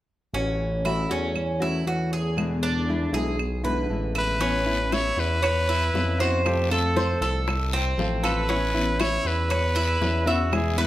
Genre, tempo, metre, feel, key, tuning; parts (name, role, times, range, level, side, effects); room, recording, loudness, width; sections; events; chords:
latin, Cuban son and guajira; 118 BPM; 4/4; straight; A major; A4 = 440 Hz
nylon-string guitar; accompaniment; 0.3-10.9 s; B2 to F#4; -30 LUFS; left 2 dB
Cuban tres; arpeggios; 0.3-10.9 s; C4 to E5; -28 LUFS; right 1 dB
smooth synth bass; bass; 0.3-10.9 s; A1 to F2; -26 LUFS; equal
claves; percussion; 0.9-10.8 s; -34 LUFS; right 6 dB
clear trumpet; melody; 4.2-10.9 s; F#4 to C#5; -26 LUFS; equal
bongos; percussion; 4.4-10.8 s; -33 LUFS; left 4 dB
guiro; percussion; 4.4-10.9 s; -37 LUFS; left 5 dB
light reverb; -22 LUFS; side -14 dB against mid
0.3-4.4 A section; 4.4-10.9 B section
0.3 A6; 2.4 E7; 4.4 Aadd9; 6.5 F; 8.5 Aadd9